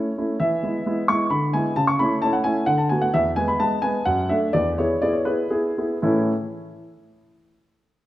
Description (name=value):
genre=classical-period piano sonatina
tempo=113-132 BPM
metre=3/4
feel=rubato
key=A major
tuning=A4 = 441 Hz
part: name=warm baby grand piano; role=solo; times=0.0-6.3 s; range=E2 to C#6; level=-19 LUFS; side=equal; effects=none
room=wet recital hall reverb, RT60 1.6 s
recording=none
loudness=-19 LUFS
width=side -14 dB against mid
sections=0.0-6.0 A section; 6.0-7.5 B section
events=slowing down 2.5-6.0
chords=0.4 E; 1.3 E7/D; 1.8 A/C#; 2.7 Bm7/D; 3.1 E; 4.1 D/F#; 4.5 E; 6.0 A